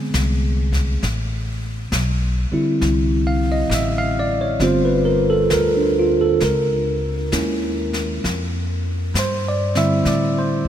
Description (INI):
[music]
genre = jazz ballad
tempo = 67 BPM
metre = 4/4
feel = swing 67% on 8ths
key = unclear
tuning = A4 = 440 Hz
[part]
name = tine electric piano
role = accompaniment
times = 0.0-10.7 s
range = D3 to F5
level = -19 LUFS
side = right 1 dB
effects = phaser
[part]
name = upright bass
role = bass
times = 0.1-10.7 s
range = G1 to A2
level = -22 LUFS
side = equal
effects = none
[part]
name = jazz brush drum kit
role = drums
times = 0.1-10.7 s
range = brushed snare drum, hi-hat, kick drum, snare drum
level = -28 LUFS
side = left 1 dB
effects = none
[sound]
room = moderate huge ambient reverb, RT60 4.9 s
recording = dreamy mix soaked in reverb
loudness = -17 LUFS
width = side -10 dB against mid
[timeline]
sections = 0.0-10.7 A section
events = none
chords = 0.0 E7b13 (rootless); 1.0 Am7; 4.6 G5; 6.4 Dbm69; 8.2 Fmaj7